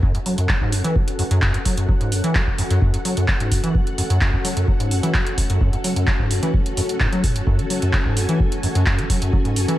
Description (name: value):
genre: acid house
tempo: 129 BPM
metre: 4/4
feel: straight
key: F# minor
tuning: A4 = 439 Hz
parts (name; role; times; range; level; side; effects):
- string machine, full ensemble; sustained chords; 0.0-9.8 s; C#4 to G#5; -27 LUFS; left 1 dB; ensemble chorus, sidechain pumping
- acid bass, square; riff; 0.0-9.8 s; F#2 to F#3; -21 LUFS; equal; overdrive, lush chorus, sidechain pumping, analog delay
- electronic kick drum; drums; 0.0-9.4 s; none; -20 LUFS; equal; none
- booming analog drum machine; drums; 0.1-9.8 s; handclaps, hi-hat; -26 LUFS; right 1 dB; none
room: digital ambience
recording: none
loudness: -17 LUFS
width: side -14 dB against mid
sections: 0.0-9.8 A section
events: none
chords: 0.0 F#m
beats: | 0.03 0.49 0.96 1.42 | 1.89 2.35 2.82 3.28 | 3.75 4.21 4.68 5.14 | 5.61 6.08 6.54 7.00 | 7.47 7.93 8.40 8.87 | 9.33